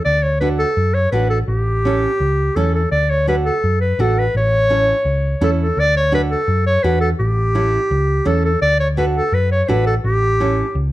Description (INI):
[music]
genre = latin, cumbia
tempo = 168 BPM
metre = 4/4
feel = straight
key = D major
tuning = A4 = 440 Hz
[part]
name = clear clarinet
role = melody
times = 0.0-10.8 s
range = G4 to D5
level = -18 LUFS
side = equal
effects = none
[part]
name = hollow-body short-scale picked electric bass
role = bass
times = 0.1-10.9 s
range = A1 to F#2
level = -18 LUFS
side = equal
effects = none
[part]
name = nylon-string guitar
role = accompaniment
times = 0.4-10.7 s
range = C#4 to A4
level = -22 LUFS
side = right 3 dB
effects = none
[sound]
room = light reverb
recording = dark, warm production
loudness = -14 LUFS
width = side -15 dB against mid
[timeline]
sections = 0.0-5.8 A section; 5.8-10.9 A section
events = none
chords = 0.1 D; 1.5 A7; 2.9 D; 4.3 A; 5.8 D; 7.2 A7; 8.6 D; 10.0 A7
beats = | 0.06 0.42 0.78 1.13 | 1.49 1.85 2.20 2.56 | 2.92 3.27 3.63 3.99 | 4.34 4.70 5.06 5.41 | 5.77 6.13 6.48 6.84 | 7.20 7.55 7.91 8.27 | 8.62 8.98 9.33 9.69 | 10.05 10.40 10.76